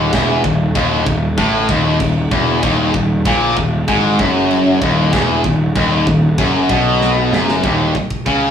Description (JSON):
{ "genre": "heavy metal", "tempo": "96 BPM", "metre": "4/4", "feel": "straight", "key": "Eb minor", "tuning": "A4 = 440 Hz", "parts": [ { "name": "distorted electric guitar", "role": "riff", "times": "0.0-8.5 s", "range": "Eb2 to Db3", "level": "-16 LUFS", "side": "left 4 dB", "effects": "overdrive" }, { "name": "high-gain distorted guitar", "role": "riff", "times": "0.0-8.5 s", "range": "Eb2 to Db3", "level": "-19 LUFS", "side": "right 7 dB", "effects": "distortion" }, { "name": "fuzz picked electric bass", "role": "bass", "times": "0.0-8.5 s", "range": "Eb1 to Db2", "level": "-18 LUFS", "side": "equal", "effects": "overdrive" }, { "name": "tight metal drum kit", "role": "drums", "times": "0.1-8.4 s", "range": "china cymbal, crash cymbal, kick drum, snare drum", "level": "-22 LUFS", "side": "equal", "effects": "none" } ], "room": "moderate booth ambience, RT60 0.2 s", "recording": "rough rehearsal-room recording, tube saturation, studio reverb", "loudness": "-12 LUFS", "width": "side -8 dB against mid", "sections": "0.0-7.6 A section", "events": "half time 0.0-7.6; drum fill 7.0-7.6", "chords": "0.0 Ebm; 7.6 N.C.", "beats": "| 0.14 0.76 1.38 2.01 | 2.63 3.25 3.88 4.50 | 5.13 5.76 6.38 7.01 | 7.64 8.26" }